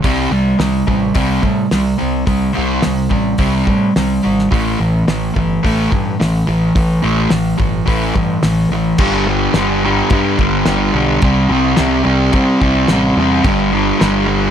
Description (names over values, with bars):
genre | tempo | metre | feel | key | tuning
garage rock duo or trio | 108 BPM | 4/4 | straight | unclear | A4 = 441 Hz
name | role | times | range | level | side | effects
fuzz guitar | riff | 0.0-14.5 s | G2 to C4 | -14 LUFS | equal | distortion
growling picked electric bass | bass | 0.0-14.5 s | G1 to C3 | -21 LUFS | equal | overdrive
cloth-damped thuddy drum kit | drums | 0.0-14.1 s | crash cymbal, hi-hat, kick drum, snare drum | -19 LUFS | equal | none
room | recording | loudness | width
light reverb | none | -12 LUFS | side -9 dB against mid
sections
0.0-9.0 A section; 9.0-14.5 B section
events
none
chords
0.0 C5; 4.5 A5; 9.0 G5; 11.2 C5; 13.4 G5